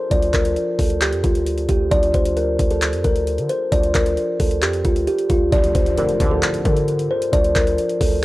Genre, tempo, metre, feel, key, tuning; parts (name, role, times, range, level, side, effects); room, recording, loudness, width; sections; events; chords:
hip hop, trap; 133 BPM; 4/4; half-time; D minor; A4 = 438 Hz
kalimba; melody; 0.0-8.2 s; F4 to D5; -20 LUFS; equal; low-pass filter, analog delay
dark concert grand piano; accompaniment; 0.0-8.2 s; F3 to F4; -28 LUFS; equal; low-pass filter
hard-hitting 808-style bass; bass; 0.1-8.2 s; D2 to D3; -23 LUFS; equal
trap drum kit; drums; 0.1-8.1 s; handclaps, hi-hat, kick drum; -20 LUFS; equal
impact; sound effects; 5.5-7.3 s; -33 LUFS; equal
resonant sweep polysynth; stabs; 6.0-6.6 s; A1 to D3; -29 LUFS; equal; chorus, analog delay
little or no reverb; dry, gritty hardware recording, cassette tape; -16 LUFS; side -18 dB against mid
0.0-5.5 A section; 5.5-8.2 B section
impact 5.5-7.3
0.0 Dm